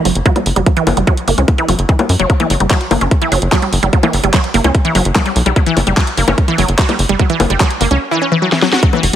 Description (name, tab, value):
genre	psychedelic trance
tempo	147 BPM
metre	4/4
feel	straight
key	unclear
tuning	A4 = 440 Hz
part	wide unison pluck	riff	0.1-9.2 s	E3 to F#4	-15 LUFS	moving between left 5 dB and right 6 dB	auto-pan, sidechain pumping, digital delay
part	tight sequencer bass	bass	0.1-9.2 s	F#1 to F#2	-15 LUFS	equal	none
part	garage drum kit	drums	0.1-9.2 s	bongos, handclaps, hi-hat, snare drum	-18 LUFS	left 2 dB	overdrive, studio ambience
part	electronic kick drum	drums	0.3-8.9 s	none	-13 LUFS	equal	overdrive, studio ambience
room	light reverb, digital ambience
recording	heavily compressed radio sound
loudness	-11 LUFS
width	side -10 dB against mid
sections	0.0-8.8 A section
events	filter sweep on synth arpeggio sound 0.0-8.8; drum fill 8.5-8.8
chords	0.0 F#5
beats	0.26 | 0.67 1.07 1.48 1.89 | 2.30 2.71 3.11 3.52 | 3.93 4.34 4.75 5.15 | 5.56 5.97 6.38 6.79 | 7.20 7.60 8.01 8.42 | 8.83